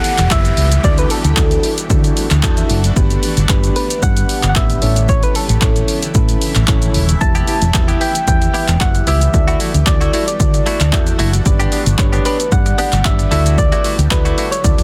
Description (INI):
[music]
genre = dance-pop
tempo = 113 BPM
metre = 4/4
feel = straight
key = D major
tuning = A4 = 440 Hz
[part]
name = soft struck synth lead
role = melody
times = 0.0-14.8 s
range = A4 to A5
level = -23 LUFS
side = equal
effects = chorus, phaser, dub echo
[part]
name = soft electric-piano-like synth keys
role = accompaniment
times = 0.0-14.8 s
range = B3 to A5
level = -25 LUFS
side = equal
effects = chorus, sidechain pumping
[part]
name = shimmering ambient pad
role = sustained chords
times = 0.0-14.8 s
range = C#3 to G4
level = -29 LUFS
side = equal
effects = chorus, built-in reverb, phaser, sidechain pumping
[part]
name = punchy analog drum machine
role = drums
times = 0.0-14.8 s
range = handclaps, hi-hat, kick drum, shaker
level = -18 LUFS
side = equal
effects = none
[part]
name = downlifter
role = sound effects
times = 0.0-3.0 s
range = none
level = -32 LUFS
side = equal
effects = none
[part]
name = fingered electric bass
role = bass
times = 0.2-14.8 s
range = Eb1 to D3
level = -18 LUFS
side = equal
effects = sidechain pumping
[part]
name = direct-recorded clean electric guitar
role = riff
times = 7.2-14.8 s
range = A3 to G4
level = -25 LUFS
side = equal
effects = analog chorus
[sound]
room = little or no reverb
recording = dense, heavily limited modern master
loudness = -14 LUFS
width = mono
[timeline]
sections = 0.0-14.8 A section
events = synth keys fill 2.2-3.0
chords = 0.0 Em; 0.8 Dadd9; 3.0 G; 4.8 A; 7.2 Em; 9.3 Dadd9; 11.5 G; 13.3 Dadd9